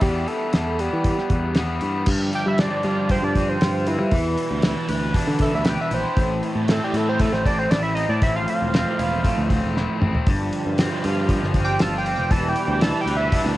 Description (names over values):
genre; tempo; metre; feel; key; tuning
indie rock; 117 BPM; 4/4; straight; unclear; A4 = 437 Hz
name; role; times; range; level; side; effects
lead with added fifth; melody; 0.0-13.4 s; E4 to A5; -25 LUFS; right 1 dB; chorus
crunchy overdriven guitar; riff; 0.0-13.6 s; E2 to G4; -28 LUFS; right 4 dB; ensemble chorus, cassette tape
raw garage guitar; riff; 0.0-13.6 s; G2 to B4; -27 LUFS; left 4 dB; overdrive, cassette tape
picked electric bass; bass; 0.0-13.6 s; E1 to G3; -24 LUFS; equal; none
cloth-damped thuddy drum kit; drums; 0.0-13.5 s; crash cymbal, hi-hat, kick drum, snare drum, toms; -22 LUFS; equal; cassette tape
string machine, violas; sustained chords; 10.3-13.6 s; G4 to C6; -35 LUFS; left 1 dB; ensemble chorus, cassette tape
room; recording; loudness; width
light reverb; home recording on cassette; -19 LUFS; side -16 dB against mid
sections
0.0-2.1 A section; 2.1-13.6 B section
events
analog synth lead solo 2.1-13.6; drum fill 9.8-10.3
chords
0.0 Em; 2.1 G7sus4; 4.1 Em7; 6.2 Am; 8.2 Fmaj7; 10.3 G7sus4; 12.3 Em7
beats
| 0.03 0.54 1.05 1.56 | 2.08 2.59 3.10 3.61 | 4.13 4.64 5.15 5.66 | 6.18 6.69 7.20 7.71 | 8.22 8.74 9.25 9.76 | 10.27 10.78 11.29 11.80 | 12.31 12.82 13.33